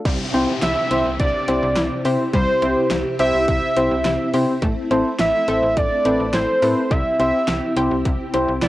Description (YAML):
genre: synth-pop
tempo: 105 BPM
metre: 4/4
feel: straight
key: C major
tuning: A4 = 438 Hz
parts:
  - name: ensemble organ-string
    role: sustained chords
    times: 0.1-8.7 s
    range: C3 to G4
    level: -26 LUFS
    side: equal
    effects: ensemble chorus, cassette tape
  - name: analog pluck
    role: arpeggios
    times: 0.1-8.7 s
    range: G3 to A4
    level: -28 LUFS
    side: left 1 dB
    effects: chorus, cassette tape, tape echo
  - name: slap-like FM bass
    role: bass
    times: 0.1-8.7 s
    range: A1 to C3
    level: -27 LUFS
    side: equal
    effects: none
  - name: pop drum kit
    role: drums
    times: 0.1-8.7 s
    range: crash cymbal, hi-hat, kick drum, snare drum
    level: -24 LUFS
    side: equal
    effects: cassette tape
  - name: downlifter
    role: sound effects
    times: 0.1-4.6 s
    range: none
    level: -31 LUFS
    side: left 1 dB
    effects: none
  - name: soft electric-piano-like synth keys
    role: accompaniment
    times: 0.3-8.5 s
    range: C4 to C5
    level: -20 LUFS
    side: left 1 dB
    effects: chorus, cassette tape
  - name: fat analog lead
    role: melody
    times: 0.6-8.7 s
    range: C5 to E5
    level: -20 LUFS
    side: right 1 dB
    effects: tape echo
room: moderate booth ambience, RT60 0.2 s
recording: home recording on cassette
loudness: -17 LUFS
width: side -16 dB against mid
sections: 0.1-8.7 A section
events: none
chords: 0.1 C; 4.6 Am; 6.9 C